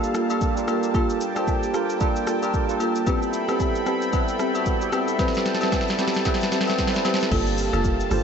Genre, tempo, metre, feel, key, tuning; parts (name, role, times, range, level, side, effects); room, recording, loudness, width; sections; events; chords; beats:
amapiano; 113 BPM; 4/4; swing 58% on 16ths; G dorian; A4 = 440 Hz
tine electric piano; accompaniment; 0.0-8.2 s; G3 to C5; -27 LUFS; right 4 dB; medium stereo tremolo
warm analog pad; sustained chords; 0.0-8.2 s; Bb3 to B5; -27 LUFS; right 1 dB; chorus
afro-pop drum kit; drums; 0.0-8.2 s; crash cymbal, hi-hat, kick drum, rim click, shaker, snare drum; -26 LUFS; equal; vintage 12-bit sampler grit
folk marimba with soft mallets; stabs; 0.1-8.2 s; Bb3 to B4; -27 LUFS; left 2 dB; analog delay
agogo bells and woodblock; percussion; 0.3-7.8 s; -33 LUFS; left 8 dB
swell; sound effects; 6.5-7.3 s; -36 LUFS; right 2 dB
deep log drum bass; bass; 7.3-8.2 s; F1 to G1; -26 LUFS; equal
moderate huge ambient reverb, RT60 4.8 s; dreamy mix soaked in reverb, nothing above 8.0 kHz; -20 LUFS; side -7 dB against mid
0.0-7.3 A section
drum fill 5.2-7.3
0.0 Gm9; 3.1 Am9; 7.3 Gm9
0.41 | 0.94 1.48 2.01 2.54 | 3.07 3.60 4.13 4.66 | 5.19 5.72 6.25 6.79 | 7.32 7.85